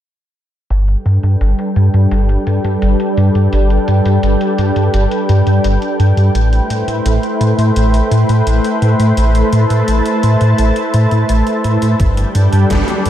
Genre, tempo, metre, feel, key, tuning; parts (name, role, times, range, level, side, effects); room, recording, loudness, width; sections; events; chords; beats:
synthwave; 85 BPM; 4/4; straight; A4 = 438 Hz
analog string pad; sustained chords; 1.0-13.1 s; G3 to A5; -15 LUFS; equal; ensemble chorus, sidechain pumping
dark detuned saw bass; bass; 0.7-13.1 s; G1 to A2; -12 LUFS; equal
gated 80s digital drum machine; drums; 0.7-13.1 s; hi-hat, snare drum; -28 LUFS; left 1 dB; gated reverb, gated reverb snare, overdrive, low-pass filter on hats, low-pass filter on snare, low-pass filter on room
electronic kick drum; drums; 12.0-12.8 s; -17 LUFS; equal; overdrive
moderate lush hall reverb, RT60 1.9 s, digital ambience; big arena sound; -11 LUFS; side -11 dB against mid
0.7-12.0 A section; 12.0-13.1 B section
filter sweep on drum 0.7-12.0; filter sweep on analog synth pad 0.7-12.0
0.7 Gadd9; 6.3 Am7; 12.0 Gadd9
| 0.70 1.41 2.12 2.82 | 3.53 4.23 4.94 5.64 | 6.35 7.06 7.76 8.47 | 9.17 9.88 10.59 11.29 | 12.00 12.70